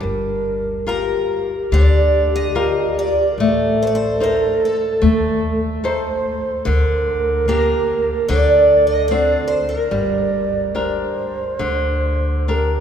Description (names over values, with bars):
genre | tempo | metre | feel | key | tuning
fado-style ballad | 73 BPM | 4/4 | rubato | G minor | A4 = 440 Hz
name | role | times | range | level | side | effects
mellow bass ocarina | second line | 0.0-12.8 s | G4 to D5 | -21 LUFS | right 2 dB | none
flamenco guitar | accompaniment | 0.0-12.8 s | D3 to C5 | -22 LUFS | left 2 dB | none
upright bass | bass | 0.0-12.8 s | G1 to Eb2 | -21 LUFS | left 1 dB | none
picked twelve-string acoustic guitar | melody | 0.9-12.4 s | A4 to Eb5 | -19 LUFS | right 1 dB | none
room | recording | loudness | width
wet cathedral reverb, RT60 4.3 s | recorded in a church or concert hall | -15 LUFS | side -8 dB against mid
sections
0.0-12.8 A section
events
none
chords
0.0 Gm7; 3.4 Adim; 6.7 Gm/D; 8.3 D7; 9.9 Gm